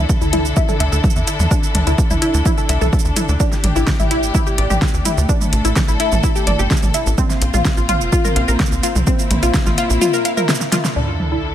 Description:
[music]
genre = melodic techno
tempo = 127 BPM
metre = 4/4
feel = straight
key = D minor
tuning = A4 = 439 Hz
[part]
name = rich studio string section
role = sustained chords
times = 0.0-11.5 s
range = D3 to A4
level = -24 LUFS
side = left 2 dB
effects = sidechain pumping
[part]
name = analog pluck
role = arpeggios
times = 0.0-11.4 s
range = C4 to F5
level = -21 LUFS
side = left 1 dB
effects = chorus, phaser, sidechain pumping, tape echo
[part]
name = tight sequencer bass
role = bass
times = 0.0-11.5 s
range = F1 to E2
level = -18 LUFS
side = equal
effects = sidechain pumping
[part]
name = deep house drum kit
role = drums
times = 0.1-11.5 s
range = hi-hat, shaker, snare drum, toms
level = -21 LUFS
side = right 1 dB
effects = overdrive, sidechain pumping on perc, low-pass filter on perc, studio reverb, sidechain pumping on hats, low-pass filter on hats, sidechain pumping on toms, low-pass filter on toms, low-pass filter on snare
[part]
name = electronic kick drum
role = drums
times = 0.1-9.6 s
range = none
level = -18 LUFS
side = equal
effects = overdrive, studio reverb
[part]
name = sub drop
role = sound effects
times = 11.0-11.5 s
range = none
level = -24 LUFS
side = right 1 dB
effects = none
[sound]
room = light reverb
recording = none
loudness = -14 LUFS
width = side -11 dB against mid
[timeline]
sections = 0.0-11.0 A section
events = filter sweep on synth arpeggio sound 0.0-11.0; drum fill 10.6-11.0; band accent 10.8; impact 11.0-11.5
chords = 0.0 Dsus2; 3.4 A7sus4; 7.2 Bbsus2; 11.0 Dsus2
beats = 0.09 0.57 1.04 | 1.51 1.98 2.46 2.93 | 3.40 3.87 4.35 4.82 | 5.29 5.76 6.24 6.71 | 7.18 7.65 8.12 8.60 | 9.07 9.54 10.02 10.49 | 10.96 11.43

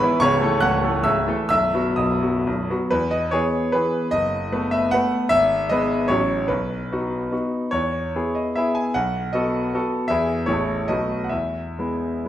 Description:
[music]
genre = classical, romantic triple-time dance for piano with dotted rhythms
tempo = 121-167 BPM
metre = 3/4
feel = rubato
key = E major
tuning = A4 = 441 Hz
[part]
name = bright grand piano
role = solo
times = 0.0-12.3 s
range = B0 to F#6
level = -19 LUFS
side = equal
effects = none
[sound]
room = wet recital hall reverb, RT60 1.4 s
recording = minimal, uncompressed stereo recording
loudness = -19 LUFS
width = side -12 dB against mid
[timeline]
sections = 0.0-2.9 A section; 2.9-12.3 B section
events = none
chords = 0.2 A/C#; 1.5 B; 2.9 E; 4.1 B7/F#; 5.3 E/G#; 6.1 F#m/A; 6.5 B; 7.7 E; 9.0 B7; 10.1 E; 10.5 Amaj7; 10.9 B7; 11.3 E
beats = | 0.21 0.62 1.06 | 1.51 1.98 2.47 | 2.93 3.34 3.75 | 4.13 4.53 4.93 | 5.30 5.69 6.08 | 6.48 6.91 7.32 | 7.72 8.15 8.56 | 8.95 9.34 9.74 | 10.10 10.48 10.88 | 11.31 11.78 12.25

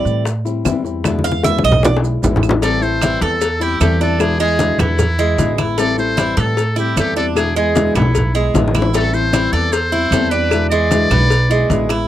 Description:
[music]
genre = latin, Cuban son and guajira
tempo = 152 BPM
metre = 4/4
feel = straight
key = A harmonic minor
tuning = A4 = 441 Hz
[part]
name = flamenco guitar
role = accompaniment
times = 0.0-12.1 s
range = B2 to E4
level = -20 LUFS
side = left 5 dB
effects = none
[part]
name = Cuban tres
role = arpeggios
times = 0.0-12.1 s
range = G#3 to F5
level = -20 LUFS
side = right 5 dB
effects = none
[part]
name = upright bass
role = bass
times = 0.1-12.1 s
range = A1 to A2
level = -18 LUFS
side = right 1 dB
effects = none
[part]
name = bongos and cowbell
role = percussion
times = 0.1-12.1 s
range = none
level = -22 LUFS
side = left 6 dB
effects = none
[part]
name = congas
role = percussion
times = 0.1-11.9 s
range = none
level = -20 LUFS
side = left 1 dB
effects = none
[part]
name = maracas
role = percussion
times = 0.1-12.1 s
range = none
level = -32 LUFS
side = right 18 dB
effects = none
[part]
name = claves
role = percussion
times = 0.7-12.1 s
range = none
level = -26 LUFS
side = right 18 dB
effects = none
[part]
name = trumpet with metal mute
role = melody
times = 2.6-11.8 s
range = E4 to D5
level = -20 LUFS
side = left 2 dB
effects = none
[sound]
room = little or no reverb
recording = dry, close 1970s-style studio recording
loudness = -13 LUFS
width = side -12 dB against mid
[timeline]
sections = 0.0-2.6 A section; 2.6-12.1 B section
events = Cuban tres solo 0.0-2.6; drum fill 1.1-2.6, 7.8-8.9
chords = 0.0 Am7; 1.1 E7; 2.6 Am7; 4.2 E7; 5.8 Am7; 7.4 E7; 8.9 Am7; 10.5 E7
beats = 0.26 0.66 | 1.05 1.45 1.84 2.23 | 2.63 3.02 3.42 3.81 | 4.21 4.60 5.00 5.39 | 5.79 6.18 6.57 6.97 | 7.36 7.76 8.15 8.54 | 8.94 9.33 9.73 10.12 | 10.52 10.91 11.31 11.70

